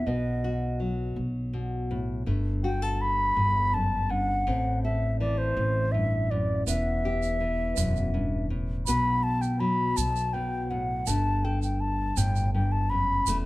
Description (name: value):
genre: acoustic folk duo or small band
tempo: 54 BPM (dotted quarters)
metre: 6/8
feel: straight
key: unclear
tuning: A4 = 437 Hz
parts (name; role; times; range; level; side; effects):
- baroque flute; melody; 0.0-13.4 s; C5 to B5; -28 LUFS; left 1 dB; plate reverb
- nylon-string guitar; accompaniment; 0.0-13.5 s; E2 to A4; -30 LUFS; left 1 dB; none
- upright bass; bass; 0.0-13.5 s; E1 to B1; -29 LUFS; equal; none
- tube shaker; percussion; 6.7-13.4 s; none; -34 LUFS; right 9 dB; none
room: moderate studio ambience, RT60 0.5 s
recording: none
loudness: -24 LUFS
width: side -18 dB against mid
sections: 0.0-13.5 A section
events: flute solo 0.0-13.5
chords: 0.1 B; 2.3 Gsus2; 4.5 Am; 6.7 Em; 8.9 B5; 11.1 Gsus2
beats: | 0.06 1.17 | 2.27 3.37 | 4.47 5.57 | 6.67 7.77 | 8.87 9.97 | 11.07 12.17 | 13.27